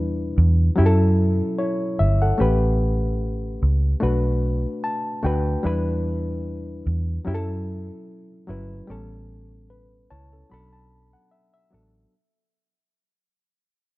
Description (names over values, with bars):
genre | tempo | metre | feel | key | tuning
lush 1970s-style soul | 74 BPM | 4/4 | swing 54% on 16ths | unclear | A4 = 440 Hz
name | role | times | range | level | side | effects
bright reed electric piano | accompaniment | 0.0-12.2 s | F#3 to B5 | -25 LUFS | left 2 dB | overdrive
vintage muted fingered electric bass | bass | 0.0-12.0 s | G1 to F#2 | -21 LUFS | equal | none
room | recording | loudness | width
small room ambience | dark, warm production | -20 LUFS | side -19 dB against mid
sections
0.0-12.1 A section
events
fade-out 0.0-12.1; reed electric piano fill 4.4-5.6, 9.7-12.1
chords
0.0 Em7; 0.8 F#m7; 2.4 A9; 4.0 Bm7; 5.6 Em7; 7.3 F#m7; 8.9 A9; 10.5 Bm7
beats
0.78 1.59 | 2.40 3.21 4.02 4.83 | 5.64 6.45 7.26 8.07 | 8.88 9.70 10.51 11.32